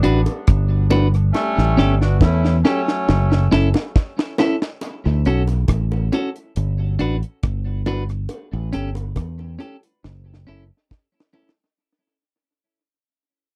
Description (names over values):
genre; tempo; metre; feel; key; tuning
roots reggae; 69 BPM; 4/4; straight; D major; A4 = 440 Hz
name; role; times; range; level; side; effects
clean electric guitar; accompaniment; 0.0-11.5 s; C#4 to B4; -24 LUFS; equal; tape echo
fingered electric bass; bass; 0.0-10.7 s; F#1 to E2; -20 LUFS; equal; none
deep reggae drum kit; drums; 0.0-11.7 s; hi-hat, kick drum, rim click, snare drum; -21 LUFS; equal; tape echo
bongos; percussion; 0.3-11.6 s; none; -32 LUFS; equal; none
warm horn section; second line; 1.3-3.5 s; F#3 to F#4; -27 LUFS; equal; tape echo
room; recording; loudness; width
little or no reverb; dry, close 1970s-style studio recording; -19 LUFS; mono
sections
0.0-4.8 A section; 4.8-11.8 B section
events
drum fill 1.3-4.8, 10.0-11.8; fade-out 4.8-11.8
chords
0.0 Gmaj7; 1.3 A7; 3.1 F#m7; 4.8 Dmaj7 (rootless); 6.6 Gmaj7; 8.3 A7; 10.0 F#m7